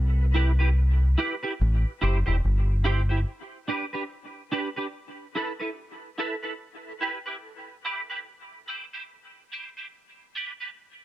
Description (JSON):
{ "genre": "dub reggae", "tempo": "72 BPM", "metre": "4/4", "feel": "swing 59% on 16ths", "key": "E minor", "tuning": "A4 = 439 Hz", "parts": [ { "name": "deep dub fingered electric bass", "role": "bass", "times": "0.0-3.2 s", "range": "E1 to C2", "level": "-21 LUFS", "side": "equal", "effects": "none" }, { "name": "clean electric guitar", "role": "accompaniment", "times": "0.3-10.7 s", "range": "D4 to C5", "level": "-30 LUFS", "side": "right 2 dB", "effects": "ensemble chorus, high-pass filter, dub echo" } ], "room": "digital ambience", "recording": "none", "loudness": "-25 LUFS", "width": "side -15 dB against mid", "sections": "0.0-3.3 A section; 3.3-11.0 B section", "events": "filter sweep on clean electric guitar 3.3-11.0", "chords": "0.0 Cmaj7; 1.6 Am7; 3.3 G/D; 4.9 B7sus4; 6.6 Em; 9.9 G/D" }